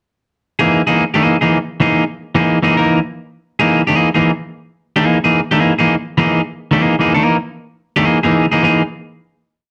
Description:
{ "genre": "funk", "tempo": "110 BPM", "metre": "4/4", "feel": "swing 56% on 16ths", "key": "unclear", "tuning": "A4 = 442 Hz", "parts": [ { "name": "electric guitar at the edge of break-up", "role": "solo", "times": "0.6-8.8 s", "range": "E3 to A#4", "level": "-14 LUFS", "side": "equal", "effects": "none" } ], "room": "wet studio reverb, RT60 0.8 s", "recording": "dark, warm production", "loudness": "-15 LUFS", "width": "mono", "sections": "0.0-8.6 breakdown; 8.6-9.7 final chord", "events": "none", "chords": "0.0 Emaj7#11" }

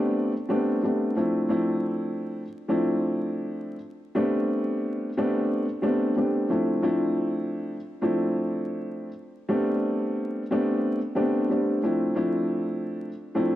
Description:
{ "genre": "hip hop", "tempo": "90 BPM", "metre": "4/4", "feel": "swing 55% on 16ths", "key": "unclear", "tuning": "A4 = 442 Hz", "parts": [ { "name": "dark baby grand piano", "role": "solo", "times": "0.0-13.6 s", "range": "F3 to E4", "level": "-24 LUFS", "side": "equal", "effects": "high-pass filter, low-pass filter" } ], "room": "light reverb, small room ambience", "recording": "dark, warm production, vinyl crackle", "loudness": "-24 LUFS", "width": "side -14 dB against mid", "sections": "0.0-13.6 A section", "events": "none", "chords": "0.0 Am11; 1.2 Dm9; 4.2 Am11; 6.5 Dm9; 9.5 Am11; 11.8 Dm9" }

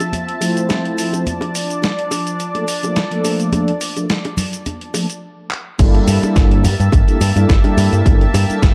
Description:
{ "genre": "nu-disco, nu disco", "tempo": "106 BPM", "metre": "4/4", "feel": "swing 54% on 16ths", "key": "G dorian", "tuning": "A4 = 440 Hz", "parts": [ { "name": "lush unison pad", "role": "sustained chords", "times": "0.0-8.7 s", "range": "F3 to A5", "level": "-26 LUFS", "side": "equal", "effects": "chorus, sidechain pumping" }, { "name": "dusty soul sampler-style drum kit", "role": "drums", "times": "0.0-8.7 s", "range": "crash cymbal, handclaps, hi-hat, shaker, snare drum", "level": "-25 LUFS", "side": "equal", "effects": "small room ambience" }, { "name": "bongos, egg shaker and congas", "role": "percussion", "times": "0.0-8.7 s", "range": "none", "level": "-27 LUFS", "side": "equal", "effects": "none" }, { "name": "mellow synth brass", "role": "accompaniment", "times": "0.4-8.6 s", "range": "F3 to C5", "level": "-22 LUFS", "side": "equal", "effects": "chorus, sidechain pumping, digital delay" }, { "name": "picked electric bass with an envelope filter", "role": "bass", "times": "5.8-8.7 s", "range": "G1 to G2", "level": "-17 LUFS", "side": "equal", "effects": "none" }, { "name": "electronic kick drum", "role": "drums", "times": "5.8-8.7 s", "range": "none", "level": "-15 LUFS", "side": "equal", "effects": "overdrive, small room ambience" } ], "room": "little or no reverb", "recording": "dark, warm production", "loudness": "-16 LUFS", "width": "mono", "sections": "0.0-5.8 A section; 5.8-8.7 B section", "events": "filter sweep on analog synth pad 0.0-5.8; stop 5.2-5.8; drum fill 5.5; drop 5.8-8.7", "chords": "0.0 Fmaj7; 1.3 Bbmaj7; 5.8 Gm69" }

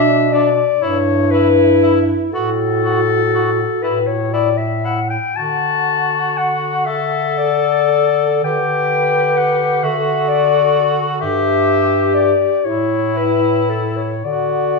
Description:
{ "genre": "classical, lyrical piece for single-reed quartet", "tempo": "36-44 BPM (dotted quarters)", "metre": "6/8", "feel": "rubato", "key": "D major", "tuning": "A4 = 440 Hz", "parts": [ { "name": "clear clarinet", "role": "melody", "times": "0.0-14.8 s", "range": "A4 to A5", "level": "-17 LUFS", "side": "left 8 dB", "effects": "none" }, { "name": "mellow alto saxophone", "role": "second line", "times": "0.0-14.8 s", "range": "D4 to B4", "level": "-20 LUFS", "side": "right 5 dB", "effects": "none" }, { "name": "clear tenor saxophone", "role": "accompaniment", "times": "0.0-14.8 s", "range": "D4 to A4", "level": "-22 LUFS", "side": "left 3 dB", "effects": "none" }, { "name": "warm bass clarinet", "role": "bass", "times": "0.0-14.8 s", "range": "G2 to D3", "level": "-21 LUFS", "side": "right 1 dB", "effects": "none" } ], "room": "moderate recital hall reverb, RT60 1.5 s", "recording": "small room ambience", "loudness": "-14 LUFS", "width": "side -2 dB against mid", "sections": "0.0-14.8 A section", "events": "none", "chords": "0.0 Bm; 0.8 Em/G; 2.3 F#m/A; 3.8 A5; 5.4 D; 8.4 Gmaj7/D; 9.8 D; 11.2 Em7/G; 12.6 A5; 14.2 D" }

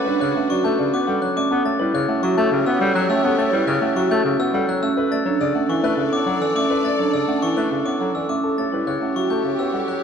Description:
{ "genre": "classical, minimalist pattern music", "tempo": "104 BPM", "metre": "3/4", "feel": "straight", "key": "unclear", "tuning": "A4 = 440 Hz", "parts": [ { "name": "warm grand piano", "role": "melody", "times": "0.0-10.0 s", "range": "A4 to F#5", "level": "-26 LUFS", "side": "left 9 dB", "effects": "none" }, { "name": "dark clarinet", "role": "second line", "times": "0.0-10.0 s", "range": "G4 to C#5", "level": "-30 LUFS", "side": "right 2 dB", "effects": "none" }, { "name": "warm bass clarinet", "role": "accompaniment", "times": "0.0-10.0 s", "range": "C#3 to B3", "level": "-25 LUFS", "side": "left 1 dB", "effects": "none" }, { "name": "clear studio string section", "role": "sustained chords", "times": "0.0-10.0 s", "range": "F#4 to D5", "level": "-30 LUFS", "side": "left 1 dB", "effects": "none" }, { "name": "glockenspiel with brass mallets", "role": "arpeggios", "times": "0.0-10.0 s", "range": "C#6 to A6", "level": "-26 LUFS", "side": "left 2 dB", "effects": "none" }, { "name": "marimba with soft mallets", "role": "arpeggios", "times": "0.1-9.9 s", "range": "C#4 to A4", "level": "-21 LUFS", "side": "right 3 dB", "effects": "none" } ], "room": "wet recital hall reverb, RT60 1.5 s", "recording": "dark, warm production", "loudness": "-18 LUFS", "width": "side -7 dB against mid", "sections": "0.0-10.0 A section", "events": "none", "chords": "0.0 Gmaj9; 1.5 A9; 5.0 Bm9; 8.4 A9" }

